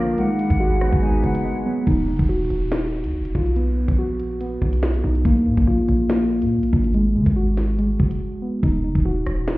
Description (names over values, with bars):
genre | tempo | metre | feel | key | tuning
hip hop, drill | 142 BPM | 4/4 | half-time | Eb harmonic minor | A4 = 440 Hz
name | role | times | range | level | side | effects
dark concert grand piano | accompaniment | 0.0-1.9 s | D3 to D5 | -26 LUFS | right 2 dB | none
glassy FM pad | sustained chords | 0.0-1.9 s | Ab4 to D6 | -35 LUFS | right 1 dB | ensemble chorus, built-in reverb
muted felt-like synth keys | arpeggios | 0.0-9.6 s | Ab3 to Gb4 | -22 LUFS | left 1 dB | chorus, low-pass filter, ping-pong delay
hard-hitting 808-style bass | bass | 0.0-9.6 s | Eb1 to Eb3 | -22 LUFS | equal | none
breathy jazz flute | second line | 0.2-1.8 s | Gb5 to Ab5 | -30 LUFS | left 4 dB | ping-pong delay
drill drum kit | drums | 0.2-9.6 s | hi-hat, kick drum, rim click, snare drum | -21 LUFS | equal | none
downlifter | sound effects | 1.9-5.3 s | none | -50 LUFS | equal | none
room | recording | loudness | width
light reverb, digital ambience | heard muffled through a wall, stone room reverb, EQ | -18 LUFS | side -19 dB against mid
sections
0.0-1.9 A section; 1.9-9.6 B section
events
break 1.4-1.9, 8.2-8.6; filter sweep on synth keys 1.9-9.6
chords
0.2 Abm7; 1.9 Ebmadd9; 3.6 B; 5.3 Bb; 6.9 Abm7; 8.6 Ebm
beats
| 0.18 0.60 1.03 1.45 | 1.87 2.29 2.72 3.14 | 3.56 3.98 4.41 4.83 | 5.25 5.67 6.10 6.52 | 6.94 7.36 7.79 8.21 | 8.63 9.05 9.48